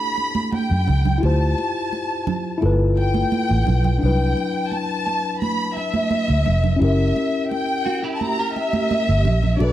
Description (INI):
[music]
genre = lush 1970s-style soul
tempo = 86 BPM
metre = 4/4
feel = straight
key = unclear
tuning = A4 = 436 Hz
[part]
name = warm studio violin section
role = melody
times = 0.0-9.7 s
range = D5 to B5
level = -24 LUFS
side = left 1 dB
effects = none
[part]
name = tine electric piano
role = accompaniment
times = 0.0-9.7 s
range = F#3 to C5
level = -25 LUFS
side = left 4 dB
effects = none
[part]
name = congas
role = percussion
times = 0.2-9.7 s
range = none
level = -25 LUFS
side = right 4 dB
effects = none
[part]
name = vintage muted fingered electric bass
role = bass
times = 0.7-9.7 s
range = F1 to F#2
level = -18 LUFS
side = equal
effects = none
[part]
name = electric guitar at the edge of break-up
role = riff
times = 7.9-9.4 s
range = E4 to A#4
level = -28 LUFS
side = right 5 dB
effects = ensemble chorus
[sound]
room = light reverb, small room ambience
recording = dark, warm production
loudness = -18 LUFS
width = side -13 dB against mid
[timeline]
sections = 0.0-9.7 A section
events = none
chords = 0.0 Em11; 1.2 Dm11; 2.6 G13; 4.0 Cmaj9#11 (rootless); 6.8 F#7b9